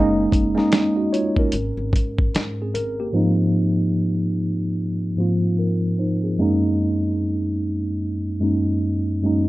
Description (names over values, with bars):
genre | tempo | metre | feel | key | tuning
lo-fi hip hop | 74 BPM | 4/4 | swing 60% on 16ths | Ab mixolydian | A4 = 440 Hz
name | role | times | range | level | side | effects
tine electric piano | accompaniment | 0.0-9.5 s | Gb2 to Eb5 | -19 LUFS | equal | medium stereo tremolo, cassette tape, low-pass filter
upright bass | bass | 0.0-3.1 s | Gb1 to Ab2 | -28 LUFS | equal | none
lo-fi sampler-style drum kit | drums | 0.3-3.0 s | hi-hat, kick drum, snare drum | -20 LUFS | equal | vintage 12-bit sampler grit
room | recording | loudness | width
moderate studio reverb, RT60 0.6 s | rough home demo mix, low-pass filter | -19 LUFS | side -17 dB against mid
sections
0.0-3.2 A section; 3.2-9.5 B section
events
filter sweep 3.2-9.5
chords
0.0 Gb69; 1.5 Abadd9; 3.2 Ab6; 6.4 Gb69